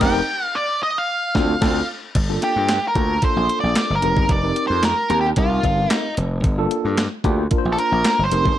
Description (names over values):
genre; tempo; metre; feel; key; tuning
early-eighties boogie funk; 112 BPM; 4/4; straight; G minor; A4 = 441 Hz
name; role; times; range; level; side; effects
octave-fuzz lead guitar; melody; 0.0-8.6 s; F4 to G5; -20 LUFS; right 1 dB; distortion, slapback echo
tine electric piano; accompaniment; 0.0-8.6 s; Bb3 to C5; -24 LUFS; left 1 dB; overdrive, fast stereo tremolo
gritty slap bass; bass; 0.0-8.6 s; F1 to G2; -22 LUFS; equal; overdrive
crisp 8-bit digital drum machine; drums; 0.0-8.6 s; crash cymbal, handclaps, hi-hat, kick drum, snare drum; -22 LUFS; equal; overdrive
room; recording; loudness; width
light reverb, digital ambience; none; -17 LUFS; side -12 dB against mid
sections
0.0-2.2 A section; 2.2-8.6 B section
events
band accent 0.0-2.2; lead electric guitar solo 2.2-8.6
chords
0.0 F9sus4; 1.1 Dm7; 2.2 Gm9; 4.0 F9sus4; 6.4 Gm9